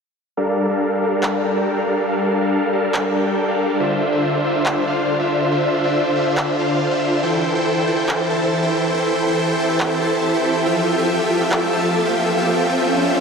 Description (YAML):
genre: future bass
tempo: 140 BPM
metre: 4/4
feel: half-time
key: unclear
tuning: A4 = 440 Hz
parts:
  - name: supersaw chords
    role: riff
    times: 0.4-13.2 s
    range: D3 to A5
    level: -17 LUFS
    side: equal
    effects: low-pass filter, diffuse ambient delay
  - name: electronic handclaps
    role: drums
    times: 1.2-11.6 s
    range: none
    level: -29 LUFS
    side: equal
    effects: none
  - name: shimmering ambient pad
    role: sustained chords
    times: 8.4-13.2 s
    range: E3 to E5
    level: -25 LUFS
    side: right 1 dB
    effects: chorus, built-in reverb
  - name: riser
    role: sound effects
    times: 11.7-13.2 s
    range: none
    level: -25 LUFS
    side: equal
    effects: none
room: wet huge ambient reverb, RT60 8.2 s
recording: dreamy mix soaked in reverb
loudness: -16 LUFS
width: side -5 dB against mid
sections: 0.4-13.2 A section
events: filter sweep on supersaw synth 0.4-13.2; riser 11.7-13.2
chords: 0.4 Gm7; 3.8 Dm9; 7.2 Am7/E; 10.7 Fmaj9